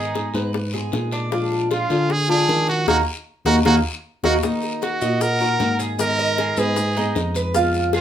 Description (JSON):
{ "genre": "latin, Cuban son and guajira", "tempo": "154 BPM", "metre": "4/4", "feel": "straight", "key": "Eb harmonic minor", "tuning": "A4 = 441 Hz", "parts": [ { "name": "brilliant trumpet", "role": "melody", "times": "0.0-8.0 s", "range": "F4 to Bb4", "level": "-22 LUFS", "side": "right 2 dB", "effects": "none" }, { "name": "flamenco guitar", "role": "accompaniment", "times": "0.0-8.0 s", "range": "Eb3 to Ab4", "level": "-25 LUFS", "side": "left 3 dB", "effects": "none" }, { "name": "Cuban tres", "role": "arpeggios", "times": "0.0-8.0 s", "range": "Bb3 to Eb5", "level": "-24 LUFS", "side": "right 4 dB", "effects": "none" }, { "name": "bright tine electric piano", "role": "bass", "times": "0.0-8.0 s", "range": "Eb2 to Eb3", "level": "-24 LUFS", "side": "equal", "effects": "none" }, { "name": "guiro", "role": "percussion", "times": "0.1-8.0 s", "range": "none", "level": "-35 LUFS", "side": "left 5 dB", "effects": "none" }, { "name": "bongos", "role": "percussion", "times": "0.2-8.0 s", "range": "none", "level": "-27 LUFS", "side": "left 6 dB", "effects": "none" }, { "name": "maracas", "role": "percussion", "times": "4.4-8.0 s", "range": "none", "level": "-34 LUFS", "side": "left 4 dB", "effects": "none" }, { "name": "bright baroque flute", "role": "second line", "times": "4.8-8.0 s", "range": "Cb5 to Gb5", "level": "-28 LUFS", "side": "left 3 dB", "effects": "none" } ], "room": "moderate studio reverb, RT60 0.6 s", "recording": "minimal, uncompressed stereo recording", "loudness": "-18 LUFS", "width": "side -10 dB against mid", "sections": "0.0-4.4 A section; 4.4-8.0 B section", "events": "band accent 2.9-4.4; drum fill 3.7-4.4", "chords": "0.0 Abm; 1.3 Bb7; 2.9 Ebm; 6.0 Abm" }